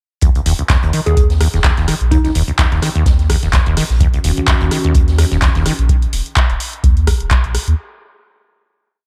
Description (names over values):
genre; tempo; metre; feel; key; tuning
acid house; 127 BPM; 4/4; swing 55% on 16ths; Eb minor; A4 = 443 Hz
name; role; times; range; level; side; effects
acid bass, saw; riff; 0.2-5.7 s; Db2 to Eb3; -19 LUFS; equal; subtle chorus, cassette tape, sidechain pumping
booming analog drum machine; drums; 0.2-7.8 s; handclaps, hi-hat, rim click; -23 LUFS; equal; none
electronic kick drum; drums; 0.2-7.4 s; none; -16 LUFS; equal; none
open jazz drum kit; drums; 0.2-5.8 s; hi-hat, snare drum; -35 LUFS; equal; none
warm sub bass; bass; 0.5-7.7 s; Eb1 to Eb2; -19 LUFS; equal; sidechain pumping
soft struck synth lead; melody; 1.1-2.3 s; Eb4 to Ab4; -24 LUFS; equal; chorus, tape echo
dark analog pad; sustained chords; 4.0-5.9 s; Eb3 to Gb4; -26 LUFS; equal; lush chorus, sidechain pumping
room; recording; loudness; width
digital ambience; none; -14 LUFS; mono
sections
0.2-7.8 groove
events
none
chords
0.2 Ebm7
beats
| 0.22 0.70 1.17 1.64 | 2.11 2.59 3.06 3.53 | 4.00 4.48 4.95 5.42 | 5.89 6.37 6.84 7.31